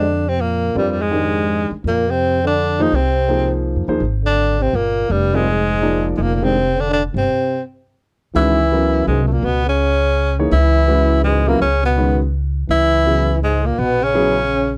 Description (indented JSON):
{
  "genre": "modal jazz",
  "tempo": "166 BPM",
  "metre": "3/4",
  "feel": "swing 64% on 8ths",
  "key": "F dorian, C# dorian from 8.4 s",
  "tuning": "A4 = 440 Hz",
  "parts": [
    { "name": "bright tenor saxophone", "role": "melody", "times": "0.0-14.7 s", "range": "G3 to E4", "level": "-21 LUFS", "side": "equal", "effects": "none" },
    { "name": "growling trombone", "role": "second line", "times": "0.0-14.7 s", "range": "G2 to E3", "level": "-25 LUFS", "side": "equal", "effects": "none" },
    { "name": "upright bass", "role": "bass", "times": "0.0-14.8 s", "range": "F1 to F2", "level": "-22 LUFS", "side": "equal", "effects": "none" },
    { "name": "warm baby grand piano", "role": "accompaniment", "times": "0.8-14.4 s", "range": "C#3 to D5", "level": "-23 LUFS", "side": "equal", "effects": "none" }
  ],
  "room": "light reverb",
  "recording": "dry, close 1970s-style studio recording",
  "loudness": "-17 LUFS",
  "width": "mono",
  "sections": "0.0-8.4 A section; 8.4-14.8 B section",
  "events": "stop 7.3-8.4",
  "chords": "0.0 Fm9; 7.3 N.C.; 8.4 C#m11; 12.7 F#add9"
}